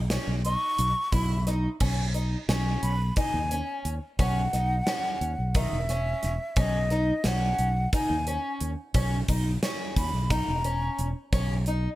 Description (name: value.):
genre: progressive instrumental, band music in an uneven meter.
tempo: 176 BPM (eighths).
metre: 7/8.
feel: straight.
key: unclear.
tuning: A4 = 440 Hz.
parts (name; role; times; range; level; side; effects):
fingered electric bass; bass; 0.0-11.9 s; E1 to D#2; -27 LUFS; equal; none.
fingerpicked twelve-string acoustic guitar; arpeggios; 0.1-11.9 s; D#3 to E4; -33 LUFS; equal; none.
gated 80s drum kit; drums; 0.1-11.8 s; crash cymbal, hi-hat, kick drum, snare drum; -29 LUFS; equal; none.
breathy concert flute; melody; 0.5-11.1 s; D#5 to C#6; -30 LUFS; equal; none.
room: little or no reverb.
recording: none.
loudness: -24 LUFS.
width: side -16 dB against mid.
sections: 0.0-1.8 A section; 1.8-12.0 B section.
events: flute solo 0.0-1.8.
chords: 0.0 B; 1.8 G#m/B; 4.2 F#5/B; 6.6 G#m7/B; 9.0 C#m13; 11.3 Badd9.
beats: 0.10 0.45 0.79 1.13 1.47 | 1.81 2.15 2.49 2.83 3.17 3.51 3.85 | 4.19 4.53 4.87 5.21 5.55 5.89 6.23 | 6.57 6.91 7.25 7.59 7.93 8.27 8.61 | 8.95 9.29 9.63 9.97 10.31 10.65 10.99 | 11.33 11.67.